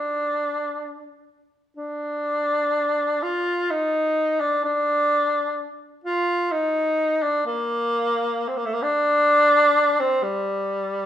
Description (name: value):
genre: caucasian folk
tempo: 64 BPM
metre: 3/4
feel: uneven beats, rubato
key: unclear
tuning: A4 = 441 Hz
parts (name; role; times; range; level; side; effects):
- mellow tenor saxophone; solo; 0.0-11.1 s; G3 to F4; -20 LUFS; equal; none
room: moderate recital hall reverb, RT60 1.3 s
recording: minimal, uncompressed stereo recording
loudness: -20 LUFS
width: side -11 dB against mid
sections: 0.0-11.1 A section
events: none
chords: none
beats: 0.79 | 1.77 2.75 3.72 | 4.66 5.59 6.52 | 7.45 8.37 9.29 | 10.23